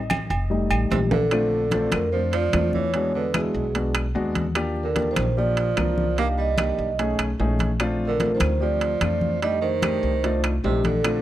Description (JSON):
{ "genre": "Afro-Cuban jazz", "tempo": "148 BPM", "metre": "4/4", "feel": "straight", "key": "Bb major", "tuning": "A4 = 442 Hz", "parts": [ { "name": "dark baby grand piano", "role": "accompaniment", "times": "0.0-11.2 s", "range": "G3 to Eb5", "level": "-27 LUFS", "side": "left 2 dB", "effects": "none" }, { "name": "upright bass", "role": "bass", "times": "0.0-11.2 s", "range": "F1 to F2", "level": "-26 LUFS", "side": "equal", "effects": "none" }, { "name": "agogo bells and timbales", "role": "percussion", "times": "0.1-11.2 s", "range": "none", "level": "-28 LUFS", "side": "right 5 dB", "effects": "none" }, { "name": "claves", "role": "percussion", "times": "0.1-11.2 s", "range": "none", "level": "-34 LUFS", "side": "left 13 dB", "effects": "none" }, { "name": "congas", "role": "percussion", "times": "0.1-11.2 s", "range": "none", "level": "-30 LUFS", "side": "left 2 dB", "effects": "none" }, { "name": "vibraphone with soft mallets", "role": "melody", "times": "0.9-11.2 s", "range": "G4 to F5", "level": "-25 LUFS", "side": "right 1 dB", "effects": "none" }, { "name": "warm tenor saxophone", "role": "second line", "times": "0.9-11.2 s", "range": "B2 to Bb3", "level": "-30 LUFS", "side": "right 8 dB", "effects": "none" } ], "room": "small room reverb", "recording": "dry, close 1970s-style studio recording", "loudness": "-20 LUFS", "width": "side -13 dB against mid", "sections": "0.0-1.3 A section; 1.3-11.2 B section", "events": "grand piano solo 0.0-1.3; drum fill 1.1", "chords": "0.0 A(b5, no3); 0.5 F7; 1.3 Bbmaj7; 2.9 E9; 4.6 Ebmaj9; 6.2 Cm9; 7.0 B13; 7.8 Bbmaj9; 9.4 F13" }